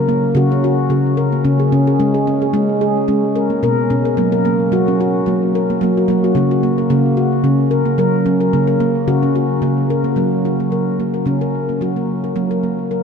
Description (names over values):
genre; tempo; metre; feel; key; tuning
world meditative; 110 BPM; 4/4; swing 53% on 16ths; F# major pentatonic; A4 = 439 Hz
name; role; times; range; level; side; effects
handpan; solo; 0.0-13.0 s; B2 to A#4; -14 LUFS; equal; tape echo
room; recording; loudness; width
wet huge ambient reverb, RT60 9.3 s; in a vast, echoing space; -14 LUFS; side -6 dB against mid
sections
0.0-10.2 A section; 10.2-13.0 B section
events
none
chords
0.0 F#; 1.5 C#5; 3.6 B5; 5.8 F#